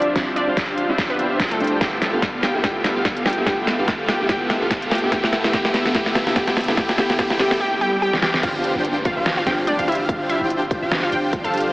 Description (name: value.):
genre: future bass.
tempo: 145 BPM.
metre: 4/4.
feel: swing 56% on 16ths, half-time.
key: unclear.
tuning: A4 = 440 Hz.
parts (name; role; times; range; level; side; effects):
wide unison pluck; melody; 0.0-11.6 s; A3 to A5; -24 LUFS; equal; sidechain pumping, digital delay.
felt-muted upright piano; accompaniment; 0.0-7.6 s; G3 to G4; -27 LUFS; equal; sidechain pumping.
shimmering ambient pad; sustained chords; 0.7-11.7 s; D3 to F4; -36 LUFS; equal; none.
dense compressed supersaw; riff; 0.0-11.7 s; B3 to G5; -24 LUFS; equal; sidechain pumping, low-pass filter.
dubstep drum kit; drums; 0.0-11.7 s; crash cymbal, hi-hat, snare drum; -22 LUFS; equal; none.
riser, swell and downlifter; sound effects; 0.8-11.7 s; none; -31 LUFS; equal; none.
electronic kick drum; drums; 0.2-11.4 s; none; -28 LUFS; equal; none.
wide unison pluck; arpeggios; 8.4-11.7 s; F5 to G5; -29 LUFS; equal; sidechain pumping, digital delay.
warm 808-style bass; bass; 8.4-11.7 s; G1; -36 LUFS; equal; sidechain pumping.
room: wet huge ambient reverb, RT60 6.0 s.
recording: heavily compressed radio sound, AM radio sound.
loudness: -18 LUFS.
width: side -21 dB against mid.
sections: 0.0-8.4 A section; 8.4-11.7 B section.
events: build-up 0.0-8.4; drum fill 0.0-7.6, 8.1-8.4; swell 7.6-8.4; drop 8.4-11.7.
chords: 0.0 Dm11; 1.8 Fmaj9#11; 5.1 Cmaj9; 8.4 G7sus4.